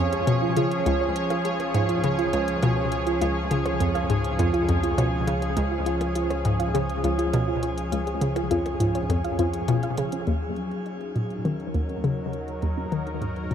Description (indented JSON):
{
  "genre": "ambient, sequencer-driven space music",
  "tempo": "102 BPM",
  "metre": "4/4",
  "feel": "straight",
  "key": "Eb minor from 10.3 s",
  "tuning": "A4 = 436 Hz",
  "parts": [
    { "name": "sweeping resonant pad", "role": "sustained chords", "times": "0.0-13.5 s", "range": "E#3 to C#5", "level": "-28 LUFS", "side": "equal", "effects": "chorus" },
    { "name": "soft round pluck", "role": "arpeggios", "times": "0.0-13.5 s", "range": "C#4 to E#5", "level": "-29 LUFS", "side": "moving between left 2 dB and right 4 dB", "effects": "chorus, auto-pan, analog delay" },
    { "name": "hollow square pluck", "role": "riff", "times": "0.0-13.5 s", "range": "C#2 to Eb3", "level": "-26 LUFS", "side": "left 1 dB", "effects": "chorus, analog delay" },
    { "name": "round analog bass", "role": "bass", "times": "0.0-13.5 s", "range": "C#2 to Eb2", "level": "-33 LUFS", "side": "equal", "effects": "none" },
    { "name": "pulsing gated texture", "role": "texture", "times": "0.0-10.3 s", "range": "C#5", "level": "-36 LUFS", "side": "right 8 dB", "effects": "chorus, built-in reverb" },
    { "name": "electronic hi-hat and percussion blips", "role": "percussion", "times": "0.1-13.5 s", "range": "none", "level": "-40 LUFS", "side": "left 5 dB", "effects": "analog delay" }
  ],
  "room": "moderate shimmer reverb, RT60 7.3 s",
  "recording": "none",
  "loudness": "-22 LUFS",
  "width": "side -8 dB against mid",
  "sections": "0.0-10.3 A section; 10.3-13.5 B section",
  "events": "filter sweep on synth arpeggio sound 10.3-13.5",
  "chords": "0.0 C#; 10.3 Ebm7"
}